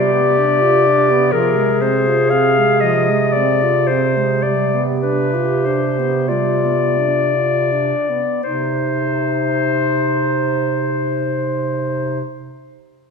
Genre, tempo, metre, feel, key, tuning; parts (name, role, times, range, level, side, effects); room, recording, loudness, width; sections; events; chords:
classical, lyrical piece for single-reed quartet; 26-42 BPM (dotted quarters); 6/8; rubato; C minor; A4 = 440 Hz
bright clarinet; melody; 0.0-12.2 s; Bb4 to F5; -18 LUFS; left 6 dB
clear alto saxophone; second line; 0.0-12.2 s; F3 to C5; -23 LUFS; right 7 dB
warm clarinet; accompaniment; 0.0-12.2 s; Eb4 to Ab4; -21 LUFS; left 2 dB
warm bass clarinet; bass; 0.0-12.2 s; C3; -21 LUFS; right 5 dB
wet scoring stage reverb, RT60 1.7 s; minimal, uncompressed stereo recording; -14 LUFS; side -5 dB against mid
0.0-8.4 A section; 8.4-12.6 B section
slowing down 0.0-8.4
0.0 G/C; 1.3 Fm/C; 4.4 G7/C; 8.4 Cm